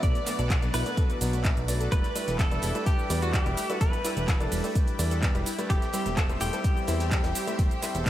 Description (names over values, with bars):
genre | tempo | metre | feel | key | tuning
progressive house | 127 BPM | 4/4 | straight | unclear | A4 = 437 Hz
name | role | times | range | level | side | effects
direct-recorded clean electric guitar | melody | 0.0-8.1 s | F#4 to D5 | -34 LUFS | equal | lush chorus, analog delay
dark studio violin section | second line | 0.0-8.1 s | F#4 to D5 | -39 LUFS | left 1 dB | none
supersaw pad | sustained chords | 0.0-8.1 s | B4 to E6 | -38 LUFS | equal | wide subtle chorus, sidechain pumping
analog pluck | arpeggios | 0.0-8.1 s | F#3 to A4 | -37 LUFS | right 1 dB | chorus, sidechain pumping, analog delay
bright concert grand piano | stabs | 0.0-8.0 s | B2 to G5 | -34 LUFS | left 2 dB | sidechain pumping, analog delay
fat analog bass | bass | 0.0-8.1 s | E1 to E2 | -29 LUFS | equal | sidechain pumping
cloth-damped thuddy drum kit | drums | 0.0-8.1 s | hi-hat, snare drum | -46 LUFS | right 1 dB | none
electronic kick drum | drums | 0.0-8.1 s | none | -25 LUFS | equal | studio reverb
pop drum kit | drums | 0.0-8.1 s | cabasa, handclaps, hi-hat | -34 LUFS | right 2 dB | sidechain pumping on hats, studio reverb, sidechain pumping on perc
room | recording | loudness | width
light reverb | none | -24 LUFS | side -13 dB against mid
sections
0.0-8.1 A section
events
none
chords
0.0 Bm; 1.9 Em7; 5.7 C/E